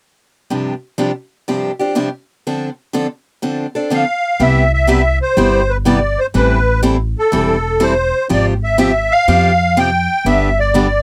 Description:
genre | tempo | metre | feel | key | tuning
acoustic string swing (jazz manouche) | 123 BPM | 4/4 | swing 66% on 8ths | C major | A4 = 440 Hz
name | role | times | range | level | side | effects
picked steel-string acoustic guitar | accompaniment | 0.5-10.9 s | G2 to A4 | -18 LUFS | equal | none
musette accordion | melody | 3.9-11.0 s | A4 to G5 | -17 LUFS | equal | none
upright bass | bass | 4.4-11.0 s | E1 to F2 | -20 LUFS | equal | none
room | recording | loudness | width
light reverb | dry, close 1970s-style studio recording | -15 LUFS | mono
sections
0.5-4.4 A section; 4.4-11.0 B section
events
none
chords
0.5 G7sus4; 2.5 Dm7; 4.4 Cmaj7; 6.4 Am7; 8.3 Fmadd9/Ab; 10.3 G

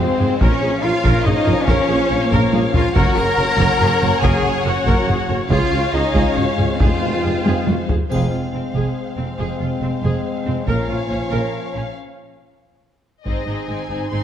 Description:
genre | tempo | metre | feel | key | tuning
cinematic, epic orchestral film score | 141 BPM | 3/4 | straight | unclear | A4 = 436 Hz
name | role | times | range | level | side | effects
warm symphonic violin section | melody | 0.0-14.2 s | Eb5 to C6 | -29 LUFS | left 6 dB | none
warm symphonic violin section | second line | 0.0-14.2 s | Ab4 to Bb5 | -26 LUFS | left 3 dB | none
bright symphonic viola section | accompaniment | 0.0-14.2 s | C4 to Db5 | -25 LUFS | right 1 dB | none
warm French horn section | sustained chords | 0.0-11.9 s | F3 to Db4 | -25 LUFS | left 3 dB | none
mellow tuba | bass | 0.0-8.0 s | F1 to Db2 | -24 LUFS | right 2 dB | none
rich studio cello section | bass | 0.0-14.2 s | F2 to Bb4 | -23 LUFS | equal | none
warm studio double bass section | bass | 0.0-14.2 s | F1 to F2 | -23 LUFS | right 2 dB | none
taiko ensemble | drums | 0.2-14.1 s | none | -20 LUFS | equal | none
timpani | percussion | 6.8-8.7 s | F2 | -27 LUFS | left 2 dB | none
triangle | percussion | 8.1-8.9 s | none | -50 LUFS | equal | none
room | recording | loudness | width
moderate scoring stage reverb, RT60 1.6 s | dark, warm production | -16 LUFS | side -9 dB against mid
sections
0.0-8.1 A section; 8.1-13.3 B section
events
drum fill 2.3-3.0, 7.5-8.1; band accent 8.1-8.5; break 12.0-13.3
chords
0.4 Bbm; 3.0 Gb; 5.5 Db; 6.8 Fm; 10.7 Bbm; 13.3 Ab

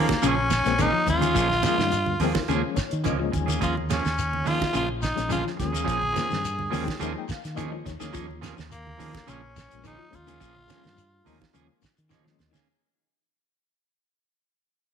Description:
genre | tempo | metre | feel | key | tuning
afrobeat | 106 BPM | 4/4 | straight | Eb mixolydian | A4 = 440 Hz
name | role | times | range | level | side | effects
growling tenor saxophone | melody | 0.0-11.8 s | Bb3 to Ab4 | -27 LUFS | equal | none
clean electric guitar | stabs | 0.0-12.7 s | F3 to Ab4 | -31 LUFS | right 9 dB | none
fingered electric bass | bass | 0.0-12.6 s | Bb1 to Eb3 | -30 LUFS | equal | none
clean electric guitar | arpeggios | 0.1-12.6 s | Db3 to F3 | -32 LUFS | left 9 dB | phaser
damped 70s drum kit | drums | 0.1-12.7 s | hi-hat, kick drum, snare drum | -32 LUFS | right 3 dB | none
congas | percussion | 0.1-12.7 s | none | -34 LUFS | right 9 dB | none
shekere | percussion | 0.2-12.7 s | none | -36 LUFS | left 7 dB | none
overdriven reed electric piano | accompaniment | 0.6-12.7 s | F3 to Ab5 | -32 LUFS | left 13 dB | fast tremolo
room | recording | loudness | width
moderate plate reverb, RT60 1.5 s | 1960s-style stereo with parts hard left and right | -22 LUFS | side -8 dB against mid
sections
0.0-12.7 A section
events
fade-out 0.0-12.7; reed electric piano fill 2.5-3.6, 6.4-8.1, 11.8-12.7; drum fill 12.1-12.7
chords
0.0 Eb9sus4

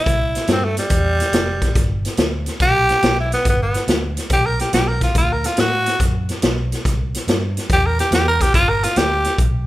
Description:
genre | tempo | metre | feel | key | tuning
electric blues shuffle | 142 BPM | 4/4 | swing 68% on 8ths | G mixolydian | A4 = 439 Hz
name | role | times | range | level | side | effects
growling tenor saxophone | melody | 0.0-9.4 s | G3 to Bb4 | -18 LUFS | equal | none
vintage muted fingered electric bass | bass | 0.1-9.7 s | F1 to A2 | -22 LUFS | equal | none
vintage drum kit | drums | 0.1-9.5 s | hi-hat, kick drum, snare drum | -19 LUFS | equal | none
room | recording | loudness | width
light reverb | band playing live in one room | -15 LUFS | side -16 dB against mid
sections
0.0-9.7 A section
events
tenor saxophone solo 0.0-9.7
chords
0.1 C; 1.8 G; 5.2 D; 6.8 C; 8.5 G

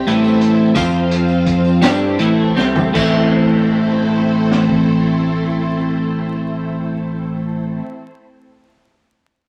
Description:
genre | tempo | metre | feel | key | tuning
psychedelic rock | 52-59 BPM (dotted quarters) | 6/8 | straight | A minor | A4 = 440 Hz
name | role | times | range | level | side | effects
string machine, violas | sustained chords | 0.0-7.8 s | F3 to F5 | -24 LUFS | equal | ensemble chorus
twelve-string electric guitar | riff | 0.0-7.8 s | A2 to G4 | -17 LUFS | equal | rotary speaker
growling fingered electric bass | bass | 0.0-7.8 s | A1 to G2 | -28 LUFS | equal | overdrive
crunchy breakbeat drum kit | drums | 0.1-4.9 s | crash cymbal, hi-hat, kick drum, snare drum, toms | -24 LUFS | equal | none
tambourine | percussion | 0.1-3.3 s | none | -41 LUFS | equal | none
room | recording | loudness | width
moderate studio reverb, RT60 0.8 s | vinyl crackle | -16 LUFS | mono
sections
0.0-2.9 A section; 2.9-7.6 B section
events
slowing down 0.0-2.9; drum fill 2.6-2.9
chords
0.1 Am; 0.8 F5; 1.8 Am

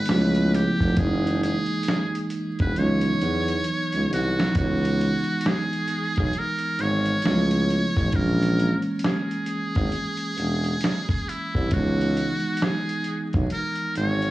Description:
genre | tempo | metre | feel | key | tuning
lo-fi hip hop | 67 BPM | 4/4 | swing 61% on 16ths | C# dorian | A4 = 440 Hz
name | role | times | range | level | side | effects
trumpet with metal mute | melody | 0.0-14.3 s | E4 to C#5 | -28 LUFS | equal | low-pass filter, tape echo
mellow tine electric piano | accompaniment | 0.0-14.3 s | D#3 to E4 | -27 LUFS | right 1 dB | medium stereo tremolo, low-pass filter
warm tuba | bass | 0.1-14.3 s | E1 to E2 | -24 LUFS | equal | transformer saturation
dusty soul sampler-style drum kit | drums | 0.1-14.3 s | hi-hat, kick drum, snare drum | -26 LUFS | equal | none
room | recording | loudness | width
light reverb | dry, gritty hardware recording, vinyl crackle, small room reverb | -21 LUFS | side -16 dB against mid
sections
0.0-4.6 A section; 4.6-14.3 B section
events
drum fill 2.8-4.6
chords
0.1 C#7alt; 1.0 F#13; 2.8 C#m11; 4.6 C#m9; 7.2 C#7alt; 8.1 A#m7b5; 11.7 C#m9

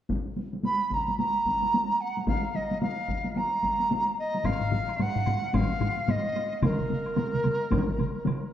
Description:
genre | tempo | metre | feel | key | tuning
japanese traditional, taiko drum ensemble | 110 BPM | 4/4 | swing 60% on 16ths | Bb miyako bushi | A4 = 440 Hz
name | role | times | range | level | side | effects
taiko ensemble | percussion | 0.1-8.5 s | none | -31 LUFS | equal | none
taiko ensemble | percussion | 0.1-7.9 s | none | -31 LUFS | left 1 dB | none
large dizi | melody | 0.6-8.2 s | Bb4 to Cb6 | -28 LUFS | right 1 dB | none
solo taiko drums | percussion | 4.4-6.2 s | none | -30 LUFS | left 2 dB | none
woodblock | percussion | 4.4-8.4 s | none | -44 LUFS | left 2 dB | none
taiko ensemble | percussion | 6.6-8.4 s | none | -31 LUFS | right 3 dB | none
room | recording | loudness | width
moderate huge ambient reverb, RT60 4.0 s | heard from further back in the room | -25 LUFS | side -11 dB against mid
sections
0.1-4.4 A section; 4.4-8.5 B section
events
none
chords
none

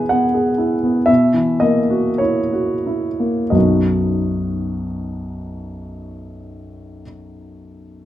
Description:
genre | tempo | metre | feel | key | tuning
classical, romantic character piece for solo piano | 43-62 BPM | 2/4 | rubato | B major | A4 = 439 Hz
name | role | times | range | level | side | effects
warm grand piano | solo | 0.0-8.1 s | B1 to G#5 | -16 LUFS | equal | none
room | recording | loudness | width
moderate large studio reverb, RT60 1.0 s | dark, warm production | -15 LUFS | side -13 dB against mid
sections
0.0-3.5 A section; 3.5-8.1 B section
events
slowing down 0.0-3.5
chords
0.0 E/B; 1.1 F#7/B; 3.5 B

